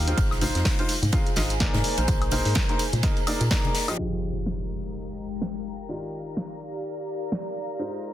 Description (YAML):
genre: piano house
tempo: 126 BPM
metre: 4/4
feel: swing 57% on 16ths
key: F dorian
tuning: A4 = 440 Hz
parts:
  - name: clear upright piano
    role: riff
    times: 0.0-8.1 s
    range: Eb3 to F5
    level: -31 LUFS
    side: equal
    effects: sidechain pumping, low-pass filter, digital delay
  - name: organ-like FM bass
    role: bass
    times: 0.0-3.5 s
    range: Ab1 to Bb2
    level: -25 LUFS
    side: equal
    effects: sidechain pumping
  - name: warbly tape-like pad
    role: texture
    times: 0.0-8.1 s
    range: Ab3 to D6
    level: -34 LUFS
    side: left 1 dB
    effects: chorus, built-in reverb, phaser, sidechain pumping
  - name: punchy analog drum machine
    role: drums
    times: 0.1-8.1 s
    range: hi-hat, shaker, snare drum, woodblock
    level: -30 LUFS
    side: equal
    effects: none
  - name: tambourine and congas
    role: percussion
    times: 0.1-4.0 s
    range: none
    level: -34 LUFS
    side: left 3 dB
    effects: none
  - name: electronic kick drum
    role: drums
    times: 0.2-3.6 s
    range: none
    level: -25 LUFS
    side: equal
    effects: overdrive
  - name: natural country drum kit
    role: drums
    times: 0.2-4.0 s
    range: hi-hat, ride cymbal, snare drum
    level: -33 LUFS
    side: right 2 dB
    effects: sidechain pumping on cymbals, high-pass filter on cymbals, sidechain pumping on hats, high-pass filter on hats, high-pass filter on snare, high-pass filter on room
  - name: analog string pad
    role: sustained chords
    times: 4.5-8.1 s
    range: Bb4 to Bb5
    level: -43 LUFS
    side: left 4 dB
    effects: ensemble chorus, sidechain pumping
  - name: impact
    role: sound effects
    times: 4.0-5.9 s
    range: none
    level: -34 LUFS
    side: equal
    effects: none
room: light reverb, small room ambience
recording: dense, heavily limited modern master, low-pass filter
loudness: -24 LUFS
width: side -12 dB against mid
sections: 0.0-4.0 A section; 4.0-8.1 B section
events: impact 4.0-5.9; filter sweep on upright piano 4.0-8.1; filter sweep 4.0-8.1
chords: 0.2 Ab6; 1.8 Bb9sus4; 4.0 Fm9; 5.9 Ebmaj9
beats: | 0.17 0.65 1.13 1.60 | 2.08 2.56 3.03 3.51 | 3.98 4.46 4.94 5.41 | 5.89 6.37 6.84 7.32 | 7.79